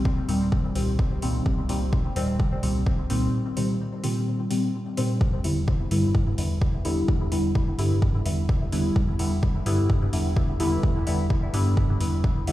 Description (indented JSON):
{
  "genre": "dub techno",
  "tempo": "128 BPM",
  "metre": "4/4",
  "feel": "straight",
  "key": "unclear",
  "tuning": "A4 = 439 Hz",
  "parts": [
    { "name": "round analog bass", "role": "bass", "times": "0.0-12.5 s", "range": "C2 to G2", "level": "-27 LUFS", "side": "equal", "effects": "sidechain pumping" },
    { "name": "electronic kick drum", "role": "drums", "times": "0.1-12.3 s", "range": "none", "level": "-24 LUFS", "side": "equal", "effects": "overdrive" },
    { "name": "deep mellow chord stab", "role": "stabs", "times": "0.3-12.5 s", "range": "Bb2 to E4", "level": "-26 LUFS", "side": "equal", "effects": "chorus, phaser, sidechain pumping, dub echo" },
    { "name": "electronic hi-hat", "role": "drums", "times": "0.3-12.5 s", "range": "none", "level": "-39 LUFS", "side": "equal", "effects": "overdrive" }
  ],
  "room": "light reverb, digital ambience",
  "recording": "played on a big sound system in a bare room, large studio reverb",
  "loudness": "-22 LUFS",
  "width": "side -15 dB against mid",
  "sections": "0.0-12.5 A section",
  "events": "none",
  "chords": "0.0 Cm7; 5.2 Em7"
}